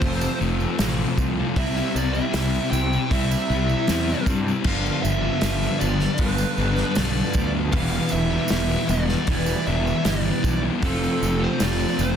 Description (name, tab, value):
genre	rock, shoegaze and dream pop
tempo	78 BPM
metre	4/4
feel	straight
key	G mixolydian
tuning	A4 = 440 Hz
part	fuzz lead guitar	melody	0.0-12.2 s	A4 to G5	-29 LUFS	right 3 dB	distortion, slapback echo
part	picked twelve-string acoustic guitar	arpeggios	0.0-12.2 s	F3 to E4	-36 LUFS	left 6 dB	none
part	distorted electric guitar	riff	0.0-12.2 s	G2 to F4	-28 LUFS	equal	distortion
part	overdriven semi-hollow guitar	riff	0.0-12.2 s	G2 to F4	-30 LUFS	right 9 dB	reverse reverb
part	thick fuzz guitar	riff	0.0-12.2 s	E2 to C4	-27 LUFS	left 9 dB	distortion, lush chorus
part	fuzz fingered electric bass	bass	0.0-12.2 s	E1 to G2	-25 LUFS	equal	overdrive
part	loose indie drum kit	drums	0.0-11.8 s	crash cymbal, hi-hat, kick drum, snare drum	-28 LUFS	equal	none
part	tambourine	percussion	0.0-12.2 s	none	-38 LUFS	right 8 dB	none
room	little or no reverb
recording	dense, heavily limited modern master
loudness	-20 LUFS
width	side -8 dB against mid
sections	0.0-12.2 A section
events	none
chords	0.0 F; 1.6 C; 4.7 G7; 7.7 Em7; 10.8 F